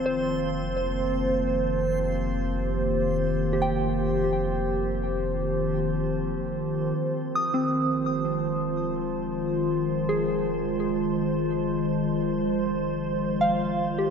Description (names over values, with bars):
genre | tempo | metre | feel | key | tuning
ambient | free time | none | none | unclear | A4 = 439 Hz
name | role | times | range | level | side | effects
warbly tape-like pad | sustained chords | 0.0-14.1 s | Eb3 to C5 | -26 LUFS | equal | chorus, built-in reverb
soft synth bell | arpeggios | 0.0-14.1 s | C4 to Eb6 | -30 LUFS | equal | chorus, ping-pong delay
warm sub bass | bass | 0.0-14.1 s | F1 | -34 LUFS | equal | none
organ-like drone | drone | 0.0-14.1 s | F3 to C5 | -32 LUFS | equal | ensemble chorus, built-in reverb
backwards swelling texture | texture | 0.0-7.0 s | C6 | -46 LUFS | right 3 dB | built-in reverb
room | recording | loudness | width
wet lush hall reverb, RT60 2.7 s | none | -24 LUFS | side -6 dB against mid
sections
0.0-7.0 A section; 7.0-14.1 B section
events
fade-out on synth texture 0.0-7.0; filter sweep on ambient pad 0.0-7.0; fade-in on sub bass 7.0-14.1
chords
0.0 Cm7/F